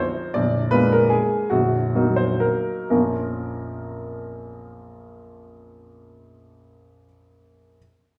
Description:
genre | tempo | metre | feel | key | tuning
classical, romantic triple-time dance for piano with dotted rhythms | 112-170 BPM | 3/4 | rubato | Bb minor | A4 = 442 Hz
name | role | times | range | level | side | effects
bright baby grand piano | solo | 0.0-7.8 s | Bb0 to D5 | -22 LUFS | equal | none
room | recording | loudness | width
wet stone room reverb, RT60 1.2 s | heard from further back in the room | -21 LUFS | mono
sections
0.0-2.9 A section; 2.9-5.6 B section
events
slowing down 0.0-2.9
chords
0.3 Bb7; 1.5 Ebm/Bb; 2.9 Bbm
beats
| 0.35 0.72 1.11 | 1.52 1.94 2.42 | 2.91 3.37 3.83 | 4.26 4.70 5.16

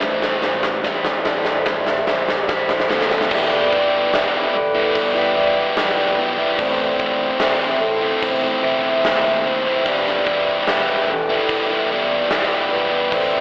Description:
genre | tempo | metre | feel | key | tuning
post-rock | 73 BPM | 4/4 | straight | E minor | A4 = 439 Hz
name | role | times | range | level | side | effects
hand-pumped harmonium | sustained chords | 0.0-13.4 s | G3 to G5 | -23 LUFS | equal | none
mellow electric guitar | arpeggios | 0.0-3.3 s | A2 to E4 | -31 LUFS | equal | none
vibraphone with soft mallets | arpeggios | 0.0-13.4 s | A4 to E5 | -22 LUFS | equal | analog delay
thick fuzz guitar | riff | 0.0-13.4 s | A2 to E4 | -20 LUFS | equal | distortion
growling fingered electric bass | bass | 0.0-13.4 s | E1 to D#2 | -33 LUFS | equal | overdrive
huge arena drum kit | drums | 0.0-13.3 s | crash cymbal, hi-hat, kick drum, snare drum, toms | -22 LUFS | equal | none
room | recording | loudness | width
wet lush hall reverb, RT60 3.0 s | dreamy mix soaked in reverb, telephone sound | -16 LUFS | side -26 dB against mid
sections
0.0-3.3 A section; 3.3-13.4 B section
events
build-up 0.0-3.3; drum fill 0.0-3.3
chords
0.0 Am7; 3.3 Em7; 6.6 Am7; 9.9 Em7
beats
| 0.04 0.86 1.68 2.50 | 3.32 4.14 4.96 5.77 | 6.59 7.41 8.22 9.04 | 9.86 10.68 11.49 12.31 | 13.12

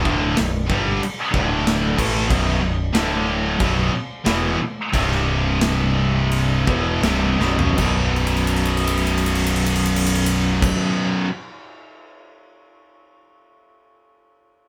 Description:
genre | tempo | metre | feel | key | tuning
hard rock | 79-93 BPM | 4/4 | straight | B minor | A4 = 440 Hz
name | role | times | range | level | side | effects
cranked stack guitar | riff | 0.0-11.3 s | B1 to A3 | -27 LUFS | equal | overdrive, harmonic tremolo
high-gain distorted guitar | riff | 0.0-11.3 s | B1 to A3 | -28 LUFS | equal | distortion
scooped high-gain guitar | riff | 0.0-11.3 s | B1 to A3 | -26 LUFS | equal | distortion
growling picked electric bass | bass | 0.0-10.7 s | B0 to A1 | -26 LUFS | equal | overdrive
big rock drum kit | drums | 0.1-12.3 s | crash cymbal, kick drum, ride cymbal, snare drum, toms | -27 LUFS | equal | none
room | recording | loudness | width
moderate studio ambience, RT60 0.5 s | band playing live in one room | -20 LUFS | mono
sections
0.0-7.8 A section; 7.8-10.8 B section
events
slowing down 2.3-7.8; drum fill 7.4-7.8, 8.2-10.6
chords
0.0 Bm; 1.3 D5; 2.0 B5; 2.9 D5; 3.6 B5; 4.9 C5; 6.7 B5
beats
0.37 1.01 1.66 | 2.30 2.94 3.60 4.25 | 4.93 5.61 6.31 7.03 | 7.78 8.54 9.29 10.05

